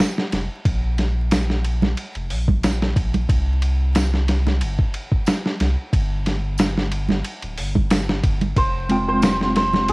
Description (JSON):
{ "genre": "trip hop", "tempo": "91 BPM", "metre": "4/4", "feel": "swing 54% on 16ths", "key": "unclear", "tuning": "A4 = 442 Hz", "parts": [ { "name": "dusty soul sampler-style drum kit", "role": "drums", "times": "0.0-9.9 s", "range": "hi-hat, kick drum, ride cymbal, snare drum", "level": "-21 LUFS", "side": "equal", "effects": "studio reverb, cassette tape" }, { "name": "soft dub sub bass", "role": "bass", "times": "0.3-9.9 s", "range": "D1 to F2", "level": "-22 LUFS", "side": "equal", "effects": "none" }, { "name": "tambourine and congas", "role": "percussion", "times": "1.3-9.9 s", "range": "none", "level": "-25 LUFS", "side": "right 4 dB", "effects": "none" }, { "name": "santur", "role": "melody", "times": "8.6-9.9 s", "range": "Ab4 to C5", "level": "-21 LUFS", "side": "right 1 dB", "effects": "cassette tape" }, { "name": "mellow electric guitar", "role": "accompaniment", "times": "8.9-9.9 s", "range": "Ab3 to G5", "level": "-21 LUFS", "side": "equal", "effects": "tremolo, cassette tape" } ], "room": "little or no reverb", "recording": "home recording on cassette, vinyl crackle", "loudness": "-18 LUFS", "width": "side -24 dB against mid", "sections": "0.0-9.9 A section", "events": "none", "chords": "0.0 N.C.; 0.7 Bb5; 3.3 C5; 5.9 G5; 8.6 Fmadd9" }